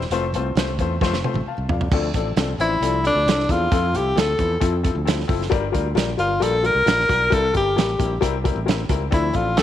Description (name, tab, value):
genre	uptempo 1960s-style soul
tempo	133 BPM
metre	4/4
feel	straight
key	F major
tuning	A4 = 441 Hz
part	modern bright fingered electric bass	bass	0.0-9.6 s	F1 to F2	-25 LUFS	equal	none
part	warm soul drum kit	drums	0.0-9.6 s	crash cymbal, hi-hat, kick drum, snare drum, toms	-23 LUFS	right 2 dB	none
part	clear upright piano	accompaniment	0.1-9.6 s	F3 to A5	-25 LUFS	left 7 dB	tube saturation
part	warm tenor saxophone	melody	2.6-9.6 s	D4 to Bb4	-20 LUFS	left 1 dB	slapback echo
room	light reverb, small room ambience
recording	1960s-style stereo, vinyl crackle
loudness	-18 LUFS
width	side -11 dB against mid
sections	0.0-1.9 A section; 1.9-9.6 B section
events	drum fill 1.0-1.9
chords	0.1 F; 1.9 Dm7; 3.7 Fmaj7; 5.5 Gm7; 7.3 C7; 9.1 Dm7